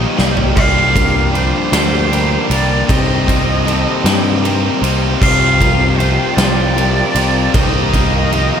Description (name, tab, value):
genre	post-rock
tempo	52 BPM (dotted quarters)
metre	6/8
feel	straight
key	C minor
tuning	A4 = 440 Hz
part	bright cello	melody	0.0-8.6 s	C5 to F5	-19 LUFS	right 2 dB	none
part	dark chamber string section	sustained chords	0.0-8.6 s	Bb3 to G5	-26 LUFS	right 1 dB	none
part	electric guitar through a small old amp	arpeggios	0.0-8.6 s	A4 to D5	-27 LUFS	right 5 dB	slapback echo, analog delay
part	twelve-string electric guitar	arpeggios	0.0-8.6 s	C3 to Eb4	-25 LUFS	left 2 dB	none
part	overdriven electric guitar	riff	0.0-8.6 s	G2 to G4	-20 LUFS	left 11 dB	slapback echo
part	tight distorted guitar	riff	0.0-8.6 s	F2 to Eb4	-21 LUFS	right 12 dB	distortion
part	picked electric bass	bass	0.0-8.5 s	C2 to G2	-17 LUFS	equal	none
part	huge arena drum kit	drums	0.2-8.5 s	crash cymbal, kick drum, ride cymbal, snare drum, toms	-17 LUFS	equal	none
room	light reverb, studio ambience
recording	none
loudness	-11 LUFS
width	side -8 dB against mid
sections	0.0-8.6 A section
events	drum fill 0.2-0.6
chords	0.0 Ebadd9/C; 0.6 Gm7/C; 2.9 Cm7; 5.2 Fsus2/C; 7.5 Ebadd9/C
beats	| 0.56 1.72 | 2.89 4.05 | 5.21 6.38 | 7.54